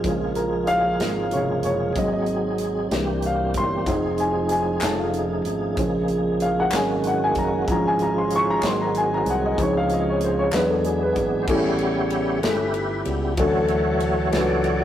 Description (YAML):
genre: slow gospel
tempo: 63 BPM (dotted quarters)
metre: 6/8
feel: straight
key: Db major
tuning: A4 = 440 Hz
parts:
  - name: dark upright piano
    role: accompaniment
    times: 0.0-14.8 s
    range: A2 to Db6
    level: -24 LUFS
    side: left 2 dB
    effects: none
  - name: tonewheel organ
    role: sustained chords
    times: 0.0-14.8 s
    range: C#3 to D5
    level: -23 LUFS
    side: right 2 dB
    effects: slow rotary speaker, overdrive, chorus vibrato
  - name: fingered electric bass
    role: bass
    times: 0.0-14.8 s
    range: F1 to E2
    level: -29 LUFS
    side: equal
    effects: none
  - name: modern studio drum kit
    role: drums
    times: 0.0-14.8 s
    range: crash cymbal, hi-hat, kick drum, ride cymbal, snare drum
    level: -30 LUFS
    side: equal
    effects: none
  - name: group handclap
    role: percussion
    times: 4.8-10.8 s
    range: none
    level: -32 LUFS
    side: left 2 dB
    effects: none
room: moderate stone room reverb, RT60 1.3 s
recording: rough rehearsal-room recording, tube saturation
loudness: -20 LUFS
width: side -11 dB against mid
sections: 0.0-11.5 A section; 11.5-14.8 B section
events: upright piano solo 0.0-11.5; tonewheel organ solo 11.5-14.8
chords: 0.0 Bbm7; 2.0 Ab7; 2.9 C7; 3.9 Fm7; 4.8 F7alt; 5.8 Bbm7; 6.7 Ab9sus4; 7.7 Db/Ab; 8.6 Ab7; 9.6 Dbmaj7; 10.5 E7; 11.5 A7; 13.4 Dmaj7